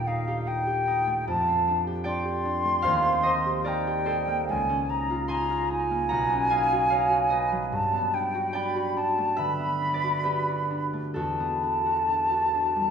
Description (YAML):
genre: classical, impressionist duo for flute and harp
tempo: 65-77 BPM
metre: 4/4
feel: rubato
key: unclear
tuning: A4 = 440 Hz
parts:
  - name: mellow silver concert flute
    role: melody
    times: 0.0-12.9 s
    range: F5 to C6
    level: -25 LUFS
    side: equal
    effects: none
  - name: concert harp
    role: accompaniment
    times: 0.0-12.9 s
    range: B1 to C6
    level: -28 LUFS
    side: right 1 dB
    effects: none
room: wet recital hall reverb, RT60 1.5 s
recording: recorded in a church or concert hall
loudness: -23 LUFS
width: side -7 dB against mid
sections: 0.0-12.9 A section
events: none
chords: 0.0 Ebmaj7#11; 1.3 F69; 2.8 Eb69; 4.5 C#69; 6.1 B69; 7.7 Gmaj9; 11.2 Em11